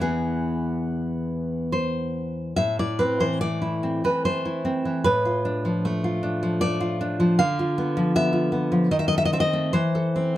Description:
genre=romantic piece for solo classical guitar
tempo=66-81 BPM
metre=3/4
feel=rubato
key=A minor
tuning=A4 = 440 Hz
part: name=nylon-string guitar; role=solo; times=0.0-10.4 s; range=E2 to F5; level=-21 LUFS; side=equal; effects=none
room=light reverb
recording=dark, warm production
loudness=-21 LUFS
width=side -13 dB against mid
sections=0.0-2.6 A section; 2.6-10.4 B section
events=none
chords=0.0 E; 2.6 Am; 5.1 Dm/A; 7.4 Bdim/D; 8.9 Adim/Eb; 9.7 Am/E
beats=| 0.02 0.91 1.75 | 2.59 3.42 4.25 | 5.05 5.86 6.63 | 7.40 8.15 8.92 | 9.73

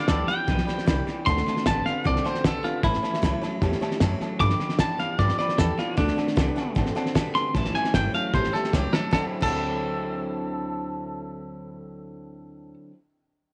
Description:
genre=rockabilly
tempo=153 BPM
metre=4/4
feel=straight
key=D mixolydian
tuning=A4 = 440 Hz
part: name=twangy electric guitar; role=melody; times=0.0-12.7 s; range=D4 to D6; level=-30 LUFS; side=equal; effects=tape echo
part: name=picked steel-string acoustic guitar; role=accompaniment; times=0.0-13.0 s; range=G2 to G4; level=-38 LUFS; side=equal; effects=none
part: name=electric guitar through a small old amp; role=riff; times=0.0-12.9 s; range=G2 to E4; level=-34 LUFS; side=equal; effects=none
part: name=dark upright piano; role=accompaniment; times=0.1-12.8 s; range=C#5 to C6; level=-39 LUFS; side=equal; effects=none
part: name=upright bass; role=bass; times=0.1-12.7 s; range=G1 to G2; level=-30 LUFS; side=equal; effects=none
part: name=cloth-damped thuddy drum kit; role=drums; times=0.1-9.5 s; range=crash cymbal, hi-hat, kick drum, snare drum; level=-29 LUFS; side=equal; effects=none
room=light reverb, small room ambience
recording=nothing above 10.7 kHz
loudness=-25 LUFS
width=mono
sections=0.0-9.1 A section; 9.1-12.3 B section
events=drum fill 8.7-9.1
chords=0.0 G7; 1.3 D7; 2.8 A7; 4.4 G7; 6.0 D7; 7.5 A7; 9.1 D9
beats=0.09 0.48 0.87 | 1.26 1.66 2.05 2.44 | 2.83 3.23 3.62 4.01 | 4.40 4.80 5.19 5.58 | 5.97 6.37 6.76 7.16 | 7.55 7.94 8.33 8.73 | 9.12 9.52 9.91 10.30 | 10.70 11.09 11.48 11.88

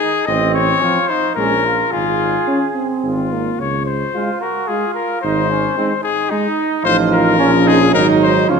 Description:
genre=classical, brass quintet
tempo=110 BPM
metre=3/4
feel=straight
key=Db major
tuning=A4 = 440 Hz
part: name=dark trumpet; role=melody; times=0.0-8.6 s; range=Eb4 to Eb5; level=-18 LUFS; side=left 7 dB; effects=none
part: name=warm flugelhorn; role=second line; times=0.0-8.6 s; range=C4 to Ab4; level=-20 LUFS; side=right 6 dB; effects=none
part: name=mellow tuba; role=bass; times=0.3-8.6 s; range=Ab1 to Db2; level=-21 LUFS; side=right 4 dB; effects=none
part: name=mellow French horn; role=accompaniment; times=0.8-8.6 s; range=C4 to F4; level=-21 LUFS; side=left 1 dB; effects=none
part: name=warm euphonium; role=accompaniment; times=0.8-8.6 s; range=F3 to Db4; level=-21 LUFS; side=right 2 dB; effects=none
room=wet recital hall reverb, RT60 1.7 s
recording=none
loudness=-14 LUFS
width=side -5 dB against mid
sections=0.0-8.6 A section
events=none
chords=0.3 F/A; 1.4 Bbm7; 1.9 Db/Ab; 3.0 Ab; 3.6 Db; 5.2 Ab; 6.8 F7/A; 7.4 Bbm; 7.9 Ab7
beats=| 0.28 0.82 1.36 | 1.92 2.48 3.03 | 3.59 4.14 4.69 | 5.23 5.77 6.31 | 6.85 7.39 7.94 | 8.50

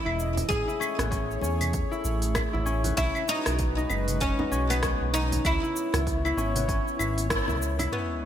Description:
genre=organic downtempo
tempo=97 BPM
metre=4/4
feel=swing 59% on 16ths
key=C# minor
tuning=A4 = 440 Hz
part: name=oud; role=melody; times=0.0-8.3 s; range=B3 to G#4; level=-30 LUFS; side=equal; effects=digital delay
part: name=warm analog pad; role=sustained chords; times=0.0-8.3 s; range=E3 to D#5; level=-35 LUFS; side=left 2 dB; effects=chorus, sidechain pumping
part: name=concert harp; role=arpeggios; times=0.0-8.3 s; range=B3 to E4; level=-32 LUFS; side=left 3 dB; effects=low-pass filter, digital delay
part: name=smooth gliding synth bass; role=bass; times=0.1-7.9 s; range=E1 to E2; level=-29 LUFS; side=equal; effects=tube saturation, sidechain pumping
part: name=deep house drum kit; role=drums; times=0.1-7.9 s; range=cabasa, claves, hi-hat, rim click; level=-32 LUFS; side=equal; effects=none
part: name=congas and bongos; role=percussion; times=0.4-7.9 s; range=none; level=-37 LUFS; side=right 3 dB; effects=none
part: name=electronic kick drum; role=drums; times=0.5-7.5 s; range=none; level=-32 LUFS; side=equal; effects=none
part: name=sub drop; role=sound effects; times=7.9-8.3 s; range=none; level=-34 LUFS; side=equal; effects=none
room=moderate lush hall reverb, RT60 2.0 s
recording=bright 1980s-style digital production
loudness=-24 LUFS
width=side -10 dB against mid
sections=0.0-7.9 A section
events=band accent 7.3-7.6; impact 7.9-8.3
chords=0.5 Amaj7; 3.0 G#m7; 5.4 C#m7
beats=| 0.50 1.12 1.74 2.35 | 2.97 3.59 4.21 4.83 | 5.45 6.07 6.68 7.30 | 7.92

